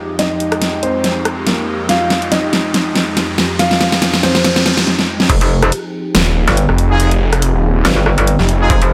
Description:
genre	heavy wobble dubstep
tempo	141 BPM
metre	4/4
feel	swing 55% on 16ths, half-time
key	F minor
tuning	A4 = 440 Hz
part	supersaw pad	sustained chords	0.0-8.9 s	F2 to Ab4	-25 LUFS	equal	phaser, sidechain pumping, low-pass filter
part	riser	sound effects	0.0-4.9 s	none	-27 LUFS	equal	none
part	dark concert grand piano	melody	0.2-4.8 s	Bb3 to F5	-21 LUFS	equal	low-pass filter, delay
part	dubstep drum kit	drums	0.2-8.9 s	crash cymbal, hi-hat, rim click, snare drum	-18 LUFS	equal	small room ambience
part	metallic wobble bass	bass	5.3-8.9 s	F1 to G1	-15 LUFS	equal	chorus, overdrive
part	electronic kick drum	drums	5.3-5.4, 8.7-8.8 s	none	-16 LUFS	equal	small room ambience
part	snarling distorted saw bass	bass	6.1-8.7 s	Eb1 to F1	-16 LUFS	equal	distortion, overdrive
part	warm brass ensemble	stabs	6.9-8.8 s	Eb4 to Ab4	-22 LUFS	equal	delay
room	light reverb, digital ambience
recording	none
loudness	-14 LUFS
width	mono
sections	0.0-5.3 A section; 5.3-8.9 B section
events	build-up 0.0-5.3; drum fill 0.0-4.9, 4.9-5.3; riser 0.0-4.9; break 4.9-5.3; drop 5.3-8.9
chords	0.0 Fm7

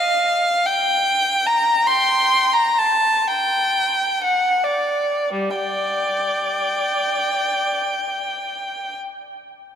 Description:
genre	classical, free, expressive piece for unaccompanied violin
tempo	23-51 BPM (dotted quarters)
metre	6/8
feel	rubato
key	G minor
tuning	A4 = 440 Hz
part	rich violin	solo	0.0-9.0 s	G3 to C6	-17 LUFS	equal	none
room	wet cathedral reverb, RT60 4.6 s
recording	none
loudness	-17 LUFS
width	side -8 dB against mid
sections	0.0-5.3 A section; 5.3-8.7 B section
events	slowing down 0.0-5.3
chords	none

